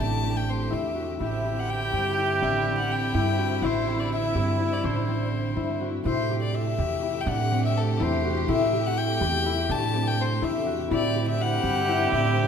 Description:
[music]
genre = contemporary instrumental, chamber music in an uneven meter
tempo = 247 BPM (eighths)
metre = 5/8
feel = straight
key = A dorian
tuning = A4 = 440 Hz
[part]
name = rich violin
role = melody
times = 0.0-12.5 s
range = A4 to A5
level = -29 LUFS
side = left 5 dB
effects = none
[part]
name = rich symphonic string section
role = sustained chords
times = 0.0-12.5 s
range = C3 to G4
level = -33 LUFS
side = right 1 dB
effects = none
[part]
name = concert harp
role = arpeggios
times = 0.0-12.5 s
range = C4 to G4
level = -29 LUFS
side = left 5 dB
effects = none
[part]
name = upright bass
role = bass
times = 0.0-12.5 s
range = A1 to A2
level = -28 LUFS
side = right 4 dB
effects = none
[part]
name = rich viola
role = second line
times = 1.2-5.8, 10.9-12.5 s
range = E4 to G4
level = -29 LUFS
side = right 3 dB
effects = none
[sound]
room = wet recital hall reverb, RT60 1.7 s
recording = none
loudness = -23 LUFS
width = side -7 dB against mid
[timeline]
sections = 0.0-6.1 A section; 6.1-12.5 A section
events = none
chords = 0.0 Am7; 10.9 Cadd9

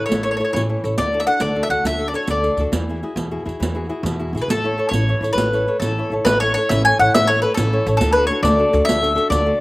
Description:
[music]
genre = italian folk, Italian serenade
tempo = 137 BPM (dotted quarters)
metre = 6/8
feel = straight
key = A major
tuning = A4 = 439 Hz
[part]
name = mandolin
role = melody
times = 0.0-9.6 s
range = A4 to G#5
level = -18 LUFS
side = left 1 dB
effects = none
[part]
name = flamenco guitar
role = accompaniment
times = 0.0-9.6 s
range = B2 to C#5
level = -22 LUFS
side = equal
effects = none
[part]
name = upright bass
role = bass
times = 0.0-9.5 s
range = A1 to E2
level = -23 LUFS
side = equal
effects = none
[part]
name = riq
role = percussion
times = 0.1-9.5 s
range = none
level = -25 LUFS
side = right 3 dB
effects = none
[sound]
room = little or no reverb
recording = recorded outdoors, with no room sound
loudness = -16 LUFS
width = side -19 dB against mid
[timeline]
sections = 0.0-6.3 A section; 6.3-9.6 A section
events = none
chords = 0.0 A; 1.0 D; 2.7 Eadd9; 4.5 A; 8.0 D

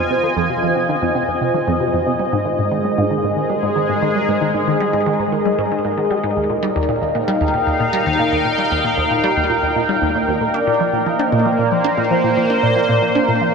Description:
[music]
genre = ambient, sequencer-driven space music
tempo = 115 BPM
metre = 4/4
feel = straight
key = unclear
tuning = A4 = 436 Hz
[part]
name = sweeping resonant pad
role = sustained chords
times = 0.0-13.5 s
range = Ab3 to Ab5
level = -17 LUFS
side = right 1 dB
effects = chorus
[part]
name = resonant blip pluck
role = riff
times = 0.0-13.5 s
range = Eb2 to D4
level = -20 LUFS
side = equal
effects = phaser, lush chorus, ping-pong delay
[part]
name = mellow horn-like synth lead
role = melody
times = 6.4-13.5 s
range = C5 to G5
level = -22 LUFS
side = equal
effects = lush chorus, ping-pong delay
[sound]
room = wet huge ambient reverb, RT60 8.6 s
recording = none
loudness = -15 LUFS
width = side -5 dB against mid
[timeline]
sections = 0.0-13.5 A section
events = none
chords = 0.0 Fm7; 2.2 Abadd9; 6.4 Ebmaj7; 10.5 Bb6

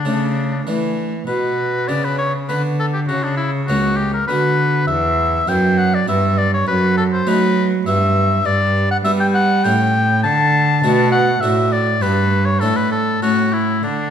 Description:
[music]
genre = classical, baroque-style sonata movement with continuo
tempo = 101 BPM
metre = 3/4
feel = straight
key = B minor, D major from 8.5 s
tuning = A4 = 440 Hz
[part]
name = clear oboe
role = melody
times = 0.0-14.1 s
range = D4 to A5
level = -18 LUFS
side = left 3 dB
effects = none
[part]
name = rich cello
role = bass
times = 0.0-14.1 s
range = C#2 to G3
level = -19 LUFS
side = right 2 dB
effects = none
[part]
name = harpsichord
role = accompaniment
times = 0.1-14.1 s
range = C#2 to G4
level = -21 LUFS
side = equal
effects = none
[sound]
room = wet recital hall reverb, RT60 1.4 s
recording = minimal, uncompressed stereo recording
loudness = -14 LUFS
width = side -8 dB against mid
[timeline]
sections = 0.0-1.3 A section; 1.3-14.1 A section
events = none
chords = 0.0 D5; 1.3 Bm; 3.1 C#5; 4.3 Bm/D; 4.9 Em; 6.7 B7/F#; 7.9 Em/G; 8.5 G; 9.7 A; 10.2 D; 12.0 G; 12.6 D5/A; 13.2 A

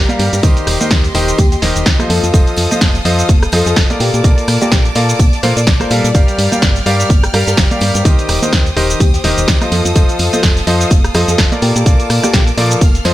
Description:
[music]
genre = piano house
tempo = 126 BPM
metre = 4/4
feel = swing 57% on 16ths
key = Bb major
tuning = A4 = 440 Hz
[part]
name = rich studio violin section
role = sustained chords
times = 0.0-13.1 s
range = Bb3 to F6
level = -23 LUFS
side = equal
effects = sidechain pumping
[part]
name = clear concert grand piano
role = riff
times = 0.0-13.1 s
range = Eb3 to F5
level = -17 LUFS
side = left 1 dB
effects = sidechain pumping, tape echo
[part]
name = solid FM bass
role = bass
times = 0.0-13.1 s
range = Eb1 to Bb2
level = -16 LUFS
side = equal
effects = tube saturation, sidechain pumping
[part]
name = punchy analog drum machine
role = drums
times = 0.1-13.1 s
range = hi-hat, rim click, shaker, snare drum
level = -18 LUFS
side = equal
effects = studio reverb
[part]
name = congas and tambourine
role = percussion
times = 0.1-13.1 s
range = none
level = -24 LUFS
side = right 2 dB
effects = none
[part]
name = jazz brush drum kit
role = drums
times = 0.2-13.1 s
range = hi-hat, snare drum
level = -27 LUFS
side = right 3 dB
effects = none
[part]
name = electronic kick drum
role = drums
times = 0.4-12.9 s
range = none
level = -11 LUFS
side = equal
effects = studio reverb
[part]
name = soft struck synth lead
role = melody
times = 1.1-13.1 s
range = G4 to D5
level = -23 LUFS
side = left 2 dB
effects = chorus, tape echo
[sound]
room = studio reverb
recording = none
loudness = -10 LUFS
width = side -15 dB against mid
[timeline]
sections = 0.0-13.1 A section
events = none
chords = 0.4 Eb6; 2.1 F7; 4.0 Bbmaj7; 6.1 Gm7; 8.1 Eb6; 9.7 F7; 11.6 Bbmaj7

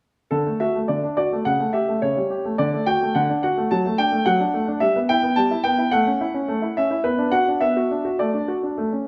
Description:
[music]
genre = classical-period piano sonatina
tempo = 106 BPM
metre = 2/4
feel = straight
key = D major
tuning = A4 = 440 Hz
[part]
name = clear concert grand piano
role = solo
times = 0.3-9.1 s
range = C#3 to A5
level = -21 LUFS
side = equal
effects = none
[sound]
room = moderate recital hall reverb, RT60 1.5 s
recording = none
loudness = -21 LUFS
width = mono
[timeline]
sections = 0.3-9.1 A section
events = none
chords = 0.3 D; 1.5 A7/C#; 2.6 D; 3.7 D/F#; 4.8 Em/G; 5.9 A; 7.1 Bm; 8.2 D/A

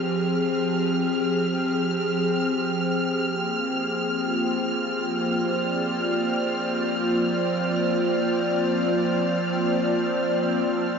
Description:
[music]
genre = ambient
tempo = free time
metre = none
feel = none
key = unclear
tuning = A4 = 440 Hz
[part]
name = airy breathy pad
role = sustained chords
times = 0.0-11.0 s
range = F3 to D5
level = -24 LUFS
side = equal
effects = chorus
[part]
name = organ-like drone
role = drone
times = 0.0-11.0 s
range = F3 to C4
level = -29 LUFS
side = equal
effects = ensemble chorus, built-in reverb
[part]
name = rich symphonic violin section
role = texture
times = 0.0-11.0 s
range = F6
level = -30 LUFS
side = right 1 dB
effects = none
[sound]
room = wet huge ambient reverb, RT60 7.7 s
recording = nothing above 7.5 kHz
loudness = -22 LUFS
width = side -6 dB against mid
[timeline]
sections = 0.0-11.0 A section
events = none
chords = 0.0 Fm; 3.2 Bb13

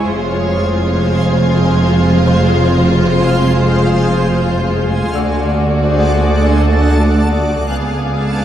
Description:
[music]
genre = cinematic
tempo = 94 BPM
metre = 4/4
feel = straight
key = unclear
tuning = A4 = 440 Hz
[part]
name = warm symphonic violin section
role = melody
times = 0.0-8.4 s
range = C5 to E#5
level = -22 LUFS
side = left 2 dB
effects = none
[part]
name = rich symphonic violin section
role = second line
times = 0.0-8.4 s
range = F4 to G#4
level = -21 LUFS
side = left 3 dB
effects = none
[part]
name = warm symphonic viola section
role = accompaniment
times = 0.0-8.4 s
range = Ab3 to B3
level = -20 LUFS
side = equal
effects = none
[part]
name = backwards swelling texture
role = sustained chords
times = 0.0-8.4 s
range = D4 to F#5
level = -21 LUFS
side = equal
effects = built-in reverb
[part]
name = dark symphonic cello section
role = bass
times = 0.0-8.4 s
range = C#2 to F2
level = -16 LUFS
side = right 2 dB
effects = none
[part]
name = warm symphonic double bass section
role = bass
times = 0.0-8.4 s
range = F1 to D2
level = -16 LUFS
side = right 1 dB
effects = none
[part]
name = warm symphonic violin section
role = texture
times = 0.1-8.4 s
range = D6 to Ab6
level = -30 LUFS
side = left 2 dB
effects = none
[part]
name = music box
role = texture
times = 1.7-8.4 s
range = C5 to A6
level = -30 LUFS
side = left 1 dB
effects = none
[part]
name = reverse cymbal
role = sound effects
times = 7.7-8.4 s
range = none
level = barely audible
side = none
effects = none
[sound]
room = wet scoring stage reverb, RT60 1.8 s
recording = dark, warm production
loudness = -11 LUFS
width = side -10 dB against mid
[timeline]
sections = 0.0-8.4 A section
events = none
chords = 0.0 Fm; 5.2 D; 7.7 C#7

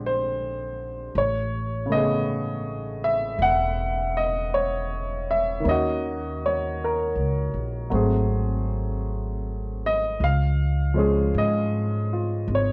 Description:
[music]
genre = jazz ballad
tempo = 53 BPM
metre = 4/4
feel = swing 67% on 8ths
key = unclear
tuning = A4 = 443 Hz
[part]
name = warm grand piano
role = accompaniment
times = 0.0-12.7 s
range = C#3 to Gb5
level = -27 LUFS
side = equal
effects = none
[part]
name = upright bass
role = bass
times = 0.0-12.7 s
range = E1 to Ab2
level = -29 LUFS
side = equal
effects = none
[sound]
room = moderate club reverb, RT60 0.6 s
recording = worn, warbling old tape, cassette tape, warbly pitch drift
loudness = -25 LUFS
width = mono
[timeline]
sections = 0.0-12.7 A section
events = none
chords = 0.0 Bb13; 1.1 Amaj9; 5.6 Ebm7; 7.9 Ab7b9; 10.2 Db

